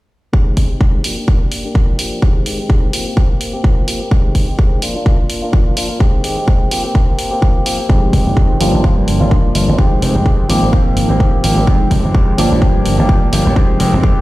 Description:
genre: filtered disco house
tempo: 127 BPM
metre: 4/4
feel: swing 56% on 16ths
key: F dorian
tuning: A4 = 440 Hz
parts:
  - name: direct-recorded clean electric guitar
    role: riff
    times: 0.3-14.2 s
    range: Eb3 to G4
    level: -20 LUFS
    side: left 1 dB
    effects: sidechain pumping, low-pass filter
  - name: electronic kick drum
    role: drums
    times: 0.3-14.1 s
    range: none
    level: -12 LUFS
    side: equal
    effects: none
  - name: electronic hi-hat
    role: drums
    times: 0.6-13.9 s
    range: none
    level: -23 LUFS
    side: right 1 dB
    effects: sidechain pumping on hats
  - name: tine electric piano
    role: accompaniment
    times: 7.9-14.2 s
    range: F3 to G4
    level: -17 LUFS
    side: equal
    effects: overdrive, phaser, vintage 12-bit sampler grit, sidechain pumping, low-pass filter
  - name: glassy slap bass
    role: bass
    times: 7.9-14.2 s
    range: F1 to Ab2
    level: -16 LUFS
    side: equal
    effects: sidechain pumping, low-pass filter
room: digital ambience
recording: played on a big sound system in a bare room, stone room reverb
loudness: -11 LUFS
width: side -18 dB against mid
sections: 0.3-14.2 A section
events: filter sweep 0.3-14.2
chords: 0.3 Abmaj7; 1.0 Gm7; 2.2 Abmaj7/Eb; 2.9 Fsus24; 4.1 Abmaj7/Eb; 4.8 Bb/F; 6.0 Abmaj7/Eb; 6.7 Fsus24; 7.9 Fm9; 8.6 Gm7; 9.8 Fm9; 10.5 Abmaj13; 11.7 Fm9; 12.4 Gm7; 13.6 Fm9

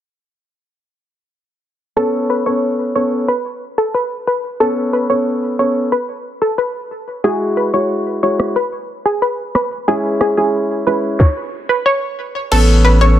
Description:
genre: dancehall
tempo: 91 BPM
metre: 4/4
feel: straight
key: unclear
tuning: A4 = 440 Hz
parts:
  - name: analog pluck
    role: melody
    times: 2.0-13.2 s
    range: G#4 to C#5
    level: -17 LUFS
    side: equal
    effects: chorus, tape echo
  - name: warm grand piano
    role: accompaniment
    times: 2.0-13.2 s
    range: G#3 to A4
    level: -17 LUFS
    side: left 1 dB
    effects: sidechain pumping
  - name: island pop drum kit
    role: drums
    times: 8.4-12.7 s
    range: crash cymbal, kick drum, rim click, snare drum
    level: -17 LUFS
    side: equal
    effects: none
  - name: saturated sub bass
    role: bass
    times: 12.5-13.2 s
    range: A1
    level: -10 LUFS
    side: equal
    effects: none
room: light reverb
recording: dense, heavily limited modern master, low-pass filter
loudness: -14 LUFS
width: side -11 dB against mid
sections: 2.0-12.5 A section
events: filter sweep 2.0-12.5; kick muted 12.5-13.2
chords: 2.0 Aadd9; 7.2 Eadd9; 9.9 C#m; 12.5 Aadd9

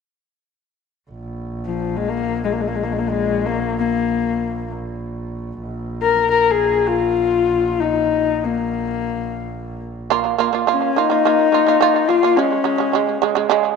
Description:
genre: mongolian traditional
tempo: free time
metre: none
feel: none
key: Bb yu mode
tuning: A4 = 440 Hz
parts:
  - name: clear double bass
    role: drone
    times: 1.1-10.2 s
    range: Bb1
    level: -27 LUFS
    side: right 1 dB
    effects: stereo widening
  - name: dark horsehead fiddle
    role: melody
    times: 1.7-13.5 s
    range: F3 to Bb4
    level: -18 LUFS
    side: left 8 dB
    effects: slapback echo
  - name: shamisen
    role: arpeggios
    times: 10.1-13.7 s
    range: Db3 to F4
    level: -17 LUFS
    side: right 12 dB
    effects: slapback echo
room: moderate spring reverb, RT60 2.8 s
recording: 1960s-style stereo with parts hard left and right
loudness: -16 LUFS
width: side -5 dB against mid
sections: 1.1-10.1 A section; 10.1-13.8 B section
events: none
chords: 1.1 N.C.; 10.1 Bb5; 12.4 Db5

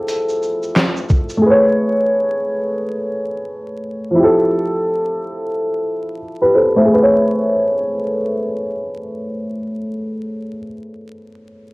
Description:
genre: lo-fi hip hop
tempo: 88 BPM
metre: 4/4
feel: swing 59% on 16ths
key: A major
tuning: A4 = 440 Hz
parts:
  - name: dark upright piano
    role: accompaniment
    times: 0.0-11.7 s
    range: F3 to E5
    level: -16 LUFS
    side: equal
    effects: cassette tape, low-pass filter
  - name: lo-fi sampler-style drum kit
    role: drums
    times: 0.1-1.4 s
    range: handclaps, hi-hat, kick drum, shaker, snare drum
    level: -16 LUFS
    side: equal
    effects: cassette tape
room: moderate studio reverb, RT60 0.6 s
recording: home recording on cassette, vinyl crackle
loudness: -15 LUFS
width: side -24 dB against mid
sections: 0.0-6.9 A section; 6.9-9.6 B section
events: filter sweep on upright piano 0.0-6.9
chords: 0.0 Fmaj9; 1.4 Amaj9; 4.2 Fmaj9; 6.9 Amaj9

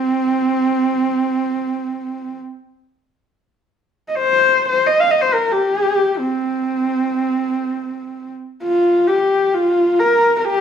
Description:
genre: mongolian traditional, Mongolian folk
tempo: 67 BPM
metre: 4/4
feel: straight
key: C yu mode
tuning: A4 = 440 Hz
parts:
  - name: warm horsehead fiddle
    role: solo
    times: 0.0-10.6 s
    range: C4 to F5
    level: -15 LUFS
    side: equal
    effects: none
room: moderate large studio reverb, RT60 0.9 s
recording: band playing live in one room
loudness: -15 LUFS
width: side -8 dB against mid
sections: 0.0-8.6 A section; 8.6-10.6 B section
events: none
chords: none

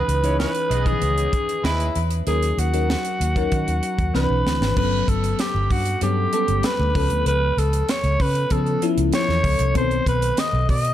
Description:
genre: polished 1980s jazz-funk pop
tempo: 96 BPM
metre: 4/4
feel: straight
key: unclear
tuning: A4 = 441 Hz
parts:
  - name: growling alto saxophone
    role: melody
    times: 0.0-10.9 s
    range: E4 to D#5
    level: -23 LUFS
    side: equal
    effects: none
  - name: bell-like FM electric piano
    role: accompaniment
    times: 0.0-10.9 s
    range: D3 to C#5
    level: -26 LUFS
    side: left 3 dB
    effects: phaser, analog chorus
  - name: vintage muted fingered electric bass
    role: bass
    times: 0.1-10.9 s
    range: G1 to D#3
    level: -22 LUFS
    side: equal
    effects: none
  - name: tight funk drum kit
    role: drums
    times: 0.1-10.9 s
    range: crash cymbal, hi-hat, kick drum, snare drum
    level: -26 LUFS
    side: right 1 dB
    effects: none
  - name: clear horn section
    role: second line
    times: 0.2-1.9 s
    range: G#3 to D#5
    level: -31 LUFS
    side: right 2 dB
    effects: ping-pong delay
room: light reverb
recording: dark, warm production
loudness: -18 LUFS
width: side -12 dB against mid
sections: 0.0-4.8 A section; 4.8-10.9 B section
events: drum fill 4.1-4.8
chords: 0.0 C#m9; 2.3 D#m7; 4.1 Cmaj9; 4.8 Gmaj9#11; 7.0 C#7alt; 9.8 B7b9

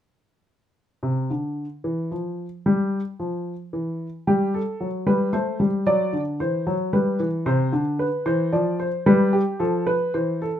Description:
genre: classical, baroque-style two-part invention for grand piano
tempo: 112 BPM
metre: 3/4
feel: straight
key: unclear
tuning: A4 = 440 Hz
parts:
  - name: dark baby grand piano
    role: solo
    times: 1.0-10.6 s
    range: C3 to D5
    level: -21 LUFS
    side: equal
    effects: none
room: light reverb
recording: minimal, uncompressed stereo recording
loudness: -21 LUFS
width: side -10 dB against mid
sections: 1.0-10.6 A section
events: none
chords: 1.0 N.C.; 4.3 G; 5.3 Am7; 5.9 D7; 6.9 G; 7.5 C; 8.5 Dm7/F; 9.1 G7

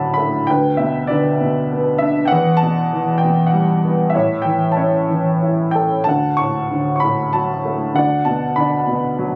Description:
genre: classical, lyrical solo piano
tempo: 96 BPM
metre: 3/4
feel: uneven beats, rubato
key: D major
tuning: A4 = 440 Hz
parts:
  - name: warm upright piano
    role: solo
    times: 0.0-9.4 s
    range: D2 to C#6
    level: -17 LUFS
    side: equal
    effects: none
room: light reverb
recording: recorded on a phone in the room, club reverb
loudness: -17 LUFS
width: mono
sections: 0.0-9.4 A section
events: none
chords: 0.5 G6/D; 2.3 Emadd9; 4.1 A; 6.1 D; 8.0 Bm/D

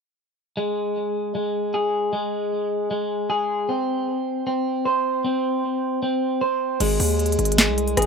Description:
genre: hip hop, trap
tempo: 154 BPM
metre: 4/4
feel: half-time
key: unclear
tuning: A4 = 439 Hz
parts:
  - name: electric guitar at the edge of break-up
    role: arpeggios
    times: 0.6-8.1 s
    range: Ab3 to C5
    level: -22 LUFS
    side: equal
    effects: harmonic tremolo, low-pass filter, digital delay
  - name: distorted 808-style bass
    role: bass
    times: 6.8-8.1 s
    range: Ab1 to Eb2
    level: -23 LUFS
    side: equal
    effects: distortion
  - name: trap drum kit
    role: drums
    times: 6.8-8.1 s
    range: crash cymbal, handclaps, hi-hat, rim click, snare drum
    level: -21 LUFS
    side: equal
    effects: overdrive
room: light reverb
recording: rough home demo mix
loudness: -21 LUFS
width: side -5 dB against mid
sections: 0.6-6.8 A section; 6.8-8.1 B section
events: none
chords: 0.6 N.C.; 6.8 Ab

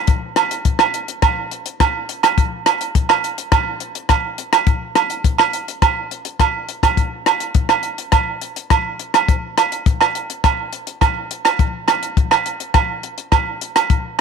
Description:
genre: highlife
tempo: 104 BPM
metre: 4/4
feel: straight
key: none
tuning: none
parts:
  - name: compact cocktail drum kit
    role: drums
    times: 0.1-14.0 s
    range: hi-hat, kick drum, rim click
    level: -18 LUFS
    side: left 5 dB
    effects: none
  - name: agogo bells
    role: percussion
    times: 0.4-13.9 s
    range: none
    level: -18 LUFS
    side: right 12 dB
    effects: none
room: light reverb, small room ambience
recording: 1960s-style stereo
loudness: -15 LUFS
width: side -6 dB against mid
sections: 0.0-7.0 A section; 7.0-14.2 B section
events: none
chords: none

